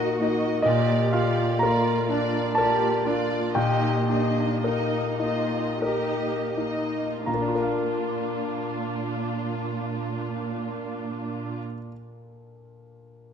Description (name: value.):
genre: classical, romantic movement for piano and orchestra.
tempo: 38-72 BPM.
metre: 3/4.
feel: rubato.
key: Bb major.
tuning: A4 = 440 Hz.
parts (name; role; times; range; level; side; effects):
bright concert grand piano; melody; 0.0-13.3 s; Bb2 to Bb5; -25 LUFS; left 2 dB; none.
warm symphonic violin section; melody; 0.0-11.6 s; F4 to Eb5; -34 LUFS; left 1 dB; none.
rich studio viola section; accompaniment; 0.0-11.6 s; Bb3 to Gb4; -30 LUFS; right 3 dB; none.
warm studio cello section; bass; 0.0-11.6 s; Bb2 to G4; -33 LUFS; right 4 dB; none.
room: moderate recital hall reverb, RT60 1.8 s.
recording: none.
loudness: -23 LUFS.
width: side -8 dB against mid.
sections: 0.0-7.3 A section; 7.3-11.2 B section.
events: slowing down 0.0-7.3.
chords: 0.0 Ebm/Bb; 0.6 Bb; 3.6 Eb/Bb; 7.3 Bb.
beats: | 0.65 1.62 2.57 | 3.56 4.63 5.84 | 7.27 8.56 9.87.